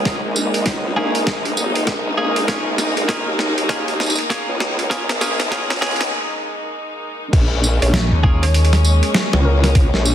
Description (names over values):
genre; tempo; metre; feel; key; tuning
glitch hop; 99 BPM; 4/4; swing 61% on 16ths; Bb minor pentatonic; A4 = 440 Hz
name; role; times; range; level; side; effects
warm studio string section; sustained chords; 0.0-10.1 s; Ab3 to Eb4; -24 LUFS; left 1 dB; sidechain pumping
formant-sweep wobble bass; bass; 0.0-10.1 s; Bb1 to Eb2; -20 LUFS; equal; chorus, high-pass filter
boom bap sampler-style drum kit; drums; 0.1-10.1 s; crash cymbal, hi-hat, snare drum, tambourine; -21 LUFS; equal; studio reverb, soft clipping on snare
electronic kick drum; drums; 0.1-9.9 s; none; -16 LUFS; equal; studio reverb
twelve-string electric guitar; stabs; 1.0-8.4 s; Bb3 to Ab4; -24 LUFS; equal; sidechain pumping, ping-pong delay
woody wave-folded pluck; melody; 7.8-9.7 s; Bb4 to Db5; -28 LUFS; equal; chorus, cassette tape, ping-pong delay
vintage slap bass; bass; 7.9-9.0 s; Bb1 to Eb2; -14 LUFS; equal; none
room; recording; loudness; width
moderate plate reverb, RT60 2.1 s; dense, heavily limited modern master, high-pass filter; -15 LUFS; side -10 dB against mid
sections
0.0-7.3 A section; 7.3-10.1 B section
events
build-up 0.0-7.3; drum fill 0.0-6.1; break 6.1-7.3; drop 7.3-10.1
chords
0.0 Bbm7